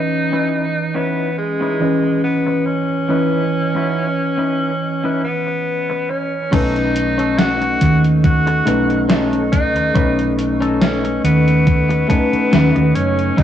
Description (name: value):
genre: vaporwave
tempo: 70 BPM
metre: 4/4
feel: swing 54% on 16ths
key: unclear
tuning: A4 = 437 Hz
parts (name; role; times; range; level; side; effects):
- clear tenor saxophone; melody; 0.0-13.4 s; G#3 to F#4; -20 LUFS; equal; vintage 12-bit sampler grit, cassette tape, tape echo
- mellow tine electric piano; accompaniment; 0.0-13.4 s; E3 to D#5; -19 LUFS; equal; lush chorus, vintage 12-bit sampler grit, cassette tape
- warbly tape-like pad; sustained chords; 0.0-13.4 s; E3 to D#6; -29 LUFS; equal; chorus, built-in reverb, cassette tape
- clean electric guitar; riff; 0.3-13.4 s; C#4 to A5; -25 LUFS; left 3 dB; wide subtle chorus, vintage 12-bit sampler grit, low-pass filter, cassette tape, analog delay
- hollow-body short-scale fingered electric bass; bass; 6.5-13.4 s; F#1 to D#2; -18 LUFS; right 1 dB; none
- electronic kick drum; drums; 6.5-13.4 s; none; -16 LUFS; equal; cassette tape
- gated 80s digital drum machine; drums; 6.5-13.4 s; crash cymbal, hi-hat, snare drum; -20 LUFS; equal; gated reverb, gated reverb snare, cassette tape
room: digital ambience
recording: home recording on cassette, low-pass filter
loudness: -14 LUFS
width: side -10 dB against mid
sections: 0.0-6.5 A section; 6.5-13.4 B section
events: clean electric guitar fill 11.7-13.4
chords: 0.0 C#m9; 6.5 B9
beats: 0.53 1.38 2.24 | 3.10 3.96 4.81 5.67 | 6.53 7.38 8.24 9.10 | 9.96 10.81 11.67 12.53 | 13.38